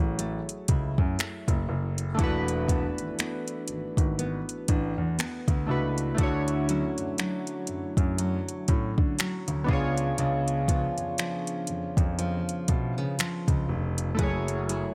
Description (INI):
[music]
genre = contemporary R&B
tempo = 60 BPM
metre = 4/4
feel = swing 58% on 16ths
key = F# minor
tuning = A4 = 440 Hz
[part]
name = warm analog keys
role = accompaniment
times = 0.0-14.9 s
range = A3 to C#5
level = -36 LUFS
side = equal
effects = chorus
[part]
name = nylon-string guitar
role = arpeggios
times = 0.0-14.9 s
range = C#3 to A4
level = -36 LUFS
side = equal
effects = digital delay
[part]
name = warm grand piano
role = bass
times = 0.0-14.8 s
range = E1 to D3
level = -32 LUFS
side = equal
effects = none
[part]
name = smooth R&B drum kit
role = drums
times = 0.2-14.9 s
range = finger snaps, hi-hat, kick drum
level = -29 LUFS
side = equal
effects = none
[sound]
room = little or no reverb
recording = none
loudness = -28 LUFS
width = mono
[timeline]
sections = 0.0-14.9 A section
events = none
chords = 0.0 F#m9; 2.2 E7sus4; 6.2 Dmaj9; 9.7 C#7b9; 14.2 F#m9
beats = 0.19 1.19 | 2.19 3.19 4.19 5.19 | 6.19 7.19 8.19 9.19 | 10.19 11.19 12.19 13.19 | 14.19